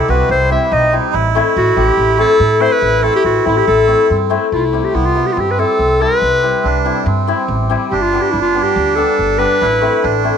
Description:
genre	klezmer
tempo	142 BPM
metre	4/4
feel	straight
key	A dorian sharp4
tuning	A4 = 437 Hz
part	bright clarinet	melody	0.0-10.2 s	E4 to E5	-15 LUFS	left 1 dB	none
part	melodica	second line	0.0-10.4 s	A3 to F#4	-18 LUFS	right 11 dB	none
part	hammered dulcimer	accompaniment	0.0-10.4 s	G3 to G4	-18 LUFS	left 12 dB	none
part	upright bass	bass	0.1-10.3 s	G1 to A2	-19 LUFS	right 1 dB	none
room	moderate plate reverb, RT60 2.6 s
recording	1960s-style stereo with parts hard left and right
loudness	-11 LUFS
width	side -7 dB against mid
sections	0.0-4.5 A section; 4.5-10.4 B section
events	none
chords	0.0 C; 1.1 Am; 7.9 G; 9.6 Am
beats	0.29 0.71 | 1.14 1.56 1.98 2.40 | 2.83 3.25 3.67 4.09 | 4.52 4.94 5.36 5.79 | 6.21 6.64 7.06 7.49 | 7.91 8.34 8.76 9.19 | 9.61 10.04

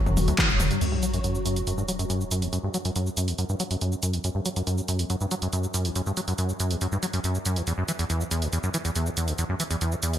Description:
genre	driving peak-time techno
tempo	140 BPM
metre	4/4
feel	straight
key	unclear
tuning	A4 = 440 Hz
part	swarming drone	drone	0.0-0.9 s	F#3 to F#4	-32 LUFS	left 3 dB	built-in reverb, ensemble chorus, sidechain pumping
part	acid bass, saw	riff	0.1-10.2 s	D2 to F#3	-26 LUFS	equal	analog chorus, sidechain pumping, ping-pong delay
part	warm sub bass	bass	0.1-0.7 s	E1	-27 LUFS	equal	sidechain pumping, low-pass filter
part	punchy analog drum machine	drums	0.1-10.2 s	crash cymbal, handclaps, hi-hat, shaker, toms	-30 LUFS	right 1 dB	sidechain pumping on hats, sidechain pumping on perc, sidechain pumping on toms, sidechain pumping on cymbals
part	electronic kick drum	drums	0.4-0.5 s	none	-25 LUFS	equal	none
part	sub drop	sound effects	0.8-2.5 s	none	-32 LUFS	equal	none
room	moderate lush hall reverb, RT60 1.6 s, digital ambience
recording	bright 1980s-style digital production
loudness	-24 LUFS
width	side -11 dB against mid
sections	0.8-10.2 A section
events	band accent 0.4; impact 0.8-2.5; filter sweep on acid bass 0.8-10.2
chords	0.0 Em; 0.8 N.C.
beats	0.38 | 0.81 1.24 1.67 2.10 | 2.53 2.96 3.38 3.81 | 4.24 4.67 5.10 5.53 | 5.96 6.38 6.81 7.24 | 7.67 8.10 8.53 8.96 | 9.38 9.81

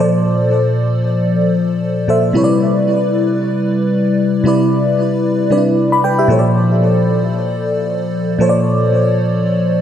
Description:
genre	amapiano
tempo	free time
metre	none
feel	none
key	C major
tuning	A4 = 441 Hz
part	FM electric piano with soft pad layer	solo	0.0-9.8 s	Bb2 to B5	-12 LUFS	left 1 dB	chorus, phaser, diffuse ambient delay
room	wet plate reverb, RT60 2.9 s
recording	dreamy mix soaked in reverb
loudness	-12 LUFS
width	side -9 dB against mid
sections	0.0-2.3 A section; 2.3-9.8 B section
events	drop 2.3-9.8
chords	0.0 Bbmaj9; 2.3 Cmaj7; 6.3 Bbmaj9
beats	free time

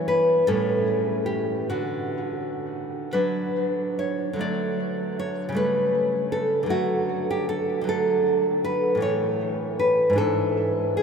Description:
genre	romantic piece for solo classical guitar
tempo	41-54 BPM (dotted quarters)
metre	6/8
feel	rubato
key	D major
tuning	A4 = 440 Hz
part	nylon-string guitar	solo	0.0-11.0 s	G#2 to D5	-22 LUFS	equal	tape echo
room	wet cathedral reverb, RT60 7.1 s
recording	in a vast, echoing space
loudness	-22 LUFS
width	side -6 dB against mid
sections	0.0-4.4 A section; 4.4-11.0 B section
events	none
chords	0.5 A7; 1.7 D; 5.6 A7/C#; 6.7 D; 9.0 A; 10.2 E7/G#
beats	0.47 | 1.71 3.13 | 4.41 5.58 | 6.73 7.89 | 9.02 10.19

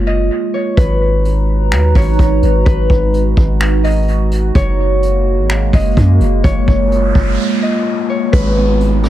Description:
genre	hip hop, atmospheric cloud-rap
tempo	127 BPM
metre	4/4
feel	half-time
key	F# major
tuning	A4 = 441 Hz
part	concert harp	melody	0.0-9.1 s	B4 to D#5	-20 LUFS	left 2 dB	low-pass filter, dub echo
part	dark analog pad	sustained chords	0.0-9.1 s	G#3 to A#5	-18 LUFS	right 2 dB	chorus, phaser, sidechain pumping
part	long sustained 808-style bass	bass	0.0-9.1 s	F#1 to F#2	-14 LUFS	equal	none
part	vintage brush drum kit	drums	0.8-9.1 s	finger snaps, hi-hat, kick drum, rim click	-15 LUFS	equal	dub echo
part	noise sweep and downlifter	sound effects	6.8-9.1 s	none	-24 LUFS	right 1 dB	none
part	mellow electric guitar	arpeggios	8.3-9.1 s	G#3 to B3	-19 LUFS	right 2 dB	low-pass filter, dub echo
room	studio reverb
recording	echo-heavy mix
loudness	-11 LUFS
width	side -13 dB against mid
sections	0.0-8.3 A section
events	break 0.0-0.8, 7.4-8.3; noise sweep 6.8-8.3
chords	0.0 F#add9; 0.8 G#m7; 4.6 F#add9; 8.3 G#m7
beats	0.30 | 0.77 1.25 1.72 2.19 | 2.66 3.13 3.61 4.08 | 4.55 5.02 5.50 5.97 | 6.44 6.91 7.39 7.86 | 8.33 8.80

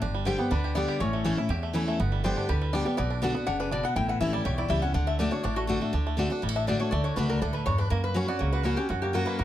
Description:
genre	bluegrass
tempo	243 BPM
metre	4/4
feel	straight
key	D major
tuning	A4 = 440 Hz
part	bluegrass banjo	melody	0.0-9.4 s	E3 to G4	-34 LUFS	right 4 dB	none
part	picked steel-string acoustic guitar	accompaniment	0.0-9.4 s	E2 to G4	-28 LUFS	left 1 dB	none
part	upright bass	bass	0.0-9.4 s	F#1 to F#2	-30 LUFS	right 1 dB	none
part	lap resonator guitar	melody	0.3-9.4 s	F#4 to G5	-32 LUFS	left 3 dB	plate reverb
room	light reverb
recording	close, detailed microphones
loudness	-25 LUFS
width	side -12 dB against mid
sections	0.0-5.9 A section; 5.9-9.4 B section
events	resonator guitar played with a steel bar solo 5.9-9.4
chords	0.0 G; 1.0 A; 2.0 G; 3.0 Bm; 4.0 A7; 5.0 D; 7.9 F#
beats	| 0.02 0.26 0.51 0.76 | 1.00 1.25 1.50 1.74 | 1.99 2.24 2.48 2.73 | 2.98 3.22 3.47 3.72 | 3.96 4.21 4.46 4.71 | 4.95 5.20 5.45 5.69 | 5.94 6.18 6.43 6.68 | 6.93 7.17 7.42 7.67 | 7.91 8.16 8.41 8.65 | 8.90 9.15 9.39

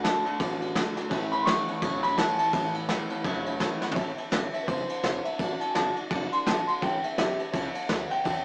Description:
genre	rockabilly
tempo	168 BPM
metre	4/4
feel	swing 60% on 8ths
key	A mixolydian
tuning	A4 = 435 Hz
part	dark upright piano	melody	0.0-8.4 s	G4 to C#6	-30 LUFS	equal	none
part	honky-tonk upright piano	accompaniment	0.0-8.4 s	C#5 to B5	-41 LUFS	equal	none
part	picked steel-string acoustic guitar	accompaniment	0.0-8.4 s	A2 to F#4	-41 LUFS	equal	none
part	electric guitar through a small old amp	riff	0.0-3.9 s	A2 to B3	-37 LUFS	equal	spring reverb
part	upright bass	bass	0.0-8.4 s	E1 to E2	-38 LUFS	equal	none
part	vintage brush drum kit	drums	0.0-8.4 s	kick drum, ride cymbal, snare drum, toms	-32 LUFS	equal	none
room	moderate studio reverb, RT60 0.6 s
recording	rough rehearsal-room recording, warm saturation, small speaker sound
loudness	-28 LUFS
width	mono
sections	0.0-4.0 A section; 4.0-8.4 B section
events	drum fill 3.8; upright piano solo 4.0-8.4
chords	0.0 D; 1.1 A; 5.4 D; 6.8 A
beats	0.04 0.40 0.75 | 1.11 1.46 1.82 2.18 | 2.53 2.89 3.25 3.61 | 3.96 4.32 4.68 5.04 | 5.39 5.75 6.11 6.47 | 6.82 7.18 7.54 7.90 | 8.25

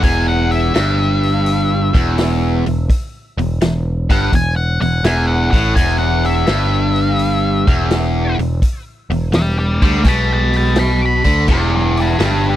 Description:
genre	blues rock power trio and southern rock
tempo	84 BPM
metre	4/4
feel	swing 68% on 8ths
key	unclear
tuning	A4 = 440 Hz
part	octave-fuzz lead guitar	melody	0.0-12.6 s	D4 to D6	-20 LUFS	left 1 dB	distortion
part	biting overdriven guitar	riff	0.0-12.6 s	E2 to D3	-18 LUFS	equal	none
part	overdriven picked electric bass	bass	0.0-12.6 s	E1 to D2	-17 LUFS	equal	none
part	vintage drum kit	drums	0.0-12.4 s	crash cymbal, hi-hat, kick drum, snare drum	-17 LUFS	equal	none
room	small room ambience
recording	dry, close 1970s-style studio recording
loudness	-13 LUFS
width	side -12 dB against mid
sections	0.0-11.5 A section; 11.5-12.6 A section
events	none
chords	0.0 E5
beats	| 0.03 0.74 1.46 2.18 | 2.89 3.61 4.33 5.04 | 5.76 6.48 7.19 7.91 | 8.62 9.34 10.05 10.77 | 11.49 12.20

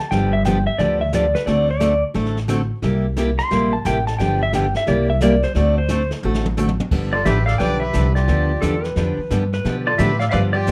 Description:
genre	country, western swing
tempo	176 BPM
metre	4/4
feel	swing 65% on 8ths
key	G mixolydian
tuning	A4 = 439 Hz
part	pedal steel guitar	second line	0.0-6.1, 8.6-9.8 s	A4 to C6	-24 LUFS	equal	none
part	picked steel-string acoustic guitar	accompaniment	0.1-10.7 s	C3 to A4	-24 LUFS	equal	none
part	upright bass	bass	0.1-10.7 s	G1 to B2	-23 LUFS	equal	none
part	jazz brush drum kit	drums	0.1-10.7 s	brushed snare drum, crash cymbal, hi-hat, kick drum, snare drum, toms	-31 LUFS	equal	none
part	clean lap steel guitar	melody	7.1-10.7 s	F4 to G5	-24 LUFS	equal	none
part	clear fiddle	second line	7.1-10.7 s	G4 to D5	-30 LUFS	equal	none
room	moderate club reverb, RT60 0.6 s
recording	none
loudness	-19 LUFS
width	mono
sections	0.0-6.9 A section; 6.9-10.7 B section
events	pedal steel guitar solo 0.0-6.9; drum fill 6.2-6.9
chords	0.0 G7; 1.5 D7; 2.8 C7; 4.2 G7; 4.9 C7; 5.6 D7; 6.9 G7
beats	| 0.11 0.45 0.79 1.13 | 1.47 1.81 2.15 2.49 | 2.83 3.17 3.52 3.86 | 4.20 4.54 4.88 5.22 | 5.56 5.90 6.24 6.58 | 6.92 7.26 7.60 7.94 | 8.29 8.63 8.97 9.31 | 9.65 9.99 10.33 10.68

